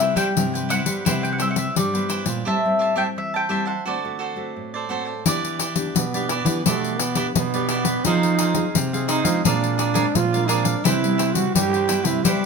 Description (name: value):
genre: samba and choro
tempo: 86 BPM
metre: 4/4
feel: straight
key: unclear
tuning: A4 = 440 Hz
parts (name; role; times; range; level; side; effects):
- mandolin; melody; 0.0-4.9 s; D5 to G5; -24 LUFS; left 2 dB; none
- cavaquinho; accompaniment; 0.0-12.5 s; Eb4 to A5; -27 LUFS; right 4 dB; none
- nylon-string guitar; accompaniment; 0.0-12.5 s; G2 to Ab4; -28 LUFS; left 2 dB; none
- nylon-string guitar; bass; 0.0-12.5 s; Bb2 to G3; -25 LUFS; right 2 dB; none
- pandeiro; percussion; 0.0-12.4 s; none; -23 LUFS; left 5 dB; none
- growling trombone; second line; 6.0-12.5 s; A3 to G4; -24 LUFS; right 5 dB; none
room: moderate studio reverb, RT60 0.8 s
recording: minimal, uncompressed stereo recording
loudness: -19 LUFS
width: side -5 dB against mid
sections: 0.0-5.3 A section; 5.3-12.5 B section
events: break 2.5-5.3; trombone solo 5.3-12.5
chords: 0.0 Cmaj7; 2.5 Am7; 3.9 D7; 5.3 Em7; 8.1 Fm7; 9.5 Bb9; 10.8 Cmaj7